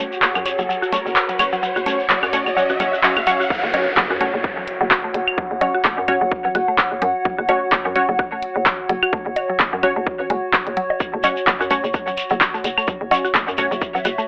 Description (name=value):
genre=minimal techno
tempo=128 BPM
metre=4/4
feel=swing 56% on 16ths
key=unclear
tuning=A4 = 441 Hz
part: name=mallet-like synth pluck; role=riff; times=0.0-14.2 s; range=F#3 to F#4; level=-27 LUFS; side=equal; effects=chorus, sidechain pumping, digital delay
part: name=filtered dub chord stab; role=stabs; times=0.0-13.7 s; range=C#4 to C#5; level=-24 LUFS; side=equal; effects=analog chorus, digital delay
part: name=hollow knocking FM bass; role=bass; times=0.0-14.2 s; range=F#1 to F#2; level=-29 LUFS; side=equal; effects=sidechain pumping
part: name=riser and downlifter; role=sound effects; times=0.0-7.3 s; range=none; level=-28 LUFS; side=equal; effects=none
part: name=warbly tape-like pad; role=texture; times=0.0-14.3 s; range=F#4 to F#5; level=-27 LUFS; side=equal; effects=chorus, built-in reverb, sidechain pumping
part: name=shekere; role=percussion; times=0.1-3.5, 11.0-14.3 s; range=none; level=-31 LUFS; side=equal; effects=none
part: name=house drum kit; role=drums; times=0.2-14.2 s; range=handclaps, hi-hat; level=-20 LUFS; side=equal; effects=overdrive
part: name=claves, congas and bongos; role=percussion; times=0.4-14.2 s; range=none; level=-26 LUFS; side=equal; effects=digital delay
part: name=electronic kick drum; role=drums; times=3.5-13.9 s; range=none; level=-28 LUFS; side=equal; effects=overdrive
room=moderate small room reverb, RT60 0.5 s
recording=telephone sound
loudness=-19 LUFS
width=mono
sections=0.0-3.5 A section; 3.5-14.3 B section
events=build-up 0.0-3.5; riser 0.0-3.5; filter sweep on synth stab 0.0-3.5; drop 3.5-14.3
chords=0.0 F#5